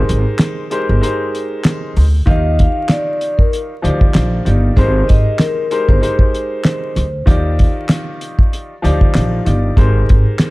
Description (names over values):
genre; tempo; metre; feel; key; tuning
hip hop, boom-bap hip-hop; 96 BPM; 4/4; swing 56% on 16ths; Eb major; A4 = 440 Hz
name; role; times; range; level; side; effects
warm upright piano; accompaniment; 0.0-10.5 s; Eb3 to F5; -21 LUFS; left 1 dB; high-pass filter, low-pass filter
upright bass; bass; 0.1-10.2 s; G1 to Eb2; -14 LUFS; equal; none
cloth-damped thuddy drum kit; drums; 0.1-10.5 s; handclaps, hi-hat, kick drum, snare drum; -13 LUFS; equal; none
vibraphone with medium mallets; melody; 2.3-7.2 s; Bb4 to F5; -20 LUFS; left 1 dB; high-pass filter, low-pass filter, digital delay
room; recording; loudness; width
small room ambience; dark, warm production, vinyl crackle; -12 LUFS; side -21 dB against mid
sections
0.0-10.5 A section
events
break 0.0-2.3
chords
0.0 Abmaj9; 2.3 Ebmaj9; 4.8 Abmaj9; 7.3 Ebmaj9; 9.8 Abmaj9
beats
0.40 1.02 1.65 | 2.27 2.90 3.52 4.15 | 4.77 5.40 6.02 6.65 | 7.27 7.90 8.52 9.15 | 9.77 10.40